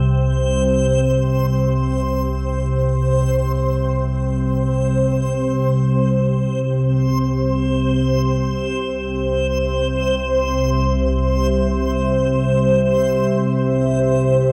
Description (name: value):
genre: dark ambient drone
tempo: free time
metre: none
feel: none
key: C major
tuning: A4 = 440 Hz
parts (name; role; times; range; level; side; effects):
- organ-like drone; drone; 0.0-14.5 s; C2 to C3; -20 LUFS; equal; ensemble chorus, built-in reverb
- backwards swelling texture; texture; 0.0-14.5 s; C5; -24 LUFS; equal; built-in reverb
- deep dark ambient pad; sustained chords; 10.3-14.5 s; G4 to E5; -31 LUFS; equal; chorus, built-in reverb
room: wet huge ambient reverb, RT60 9.1 s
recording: none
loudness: -18 LUFS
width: mono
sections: 0.0-5.2 A section; 5.2-14.5 B section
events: none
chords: 0.0 N.C.; 5.2 C